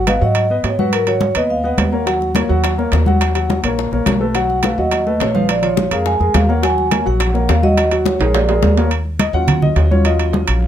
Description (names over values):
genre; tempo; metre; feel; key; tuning
Afro-Cuban jazz; 210 BPM; 4/4; straight; Eb minor; A4 = 441 Hz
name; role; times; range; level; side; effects
vibraphone with medium mallets; melody; 0.0-2.2, 4.4-8.7 s; Bb4 to Ab5; -19 LUFS; right 1 dB; none
warm concert grand piano; accompaniment; 0.0-10.7 s; F3 to Gb5; -19 LUFS; left 1 dB; none
upright bass; bass; 0.0-10.7 s; Ab1 to Ab2; -18 LUFS; equal; none
congas; percussion; 0.1-10.7 s; none; -20 LUFS; equal; none
timbales; percussion; 0.1-10.6 s; none; -23 LUFS; right 8 dB; none
bongos; percussion; 2.1-8.8 s; none; -26 LUFS; left 8 dB; none
room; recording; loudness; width
little or no reverb; close, detailed microphones; -13 LUFS; side -10 dB against mid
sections
0.0-8.9 A section; 8.9-10.7 B section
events
drum fill 8.2-8.9; grand piano solo 8.9-10.7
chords
0.0 Abm7; 2.1 Ebm7; 4.3 B7; 5.5 Bbm7; 6.6 Ebm7; 8.3 Bb7#9; 8.9 Ebm7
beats
0.07 0.36 0.64 | 0.93 1.21 1.50 1.78 | 2.07 2.35 2.64 2.92 | 3.21 3.49 3.78 4.07 | 4.35 4.64 4.92 5.21 | 5.49 5.78 6.06 6.35 | 6.63 6.92 7.20 7.49 | 7.77 8.06 8.34 8.63 | 8.91 9.20 9.48 9.77 | 10.05 10.34 10.62